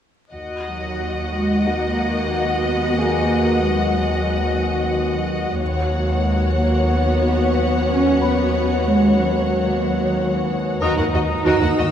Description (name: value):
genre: cinematic, suspense film score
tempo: 92 BPM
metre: 4/4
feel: straight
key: Eb minor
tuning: A4 = 438 Hz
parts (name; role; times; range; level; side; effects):
- warm symphonic violin section; melody; 0.3-11.8 s; Bb4 to Gb5; -28 LUFS; left 2 dB; none
- warm symphonic violin section; second line; 0.3-11.8 s; Eb4 to Eb5; -25 LUFS; left 2 dB; none
- warm symphonic viola section; accompaniment; 0.3-11.8 s; Gb4; -25 LUFS; right 1 dB; none
- rich symphonic double bass section; bass; 0.3-11.8 s; Eb2; -24 LUFS; right 1 dB; none
- metallic inharmonic drone; drone; 1.9-11.9 s; Eb2; -25 LUFS; equal; chorus, built-in reverb
- warm symphonic cello section; bass; 0.7-11.9 s; Gb3 to Eb4; -22 LUFS; right 1 dB; none
- dark grand piano; texture; 1.7-11.9 s; Gb4 to Eb6; -33 LUFS; left 3 dB; none
- warm symphonic violin section; texture; 10.8-11.9 s; Bb5 to Fb6; -32 LUFS; left 6 dB; none
room: wet cathedral reverb, RT60 5.9 s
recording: recorded in a church or concert hall, vinyl crackle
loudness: -17 LUFS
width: side -9 dB against mid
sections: 0.3-11.9 A section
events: none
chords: 0.3 Ebm; 5.6 Gbsus4/Eb; 10.8 Ebm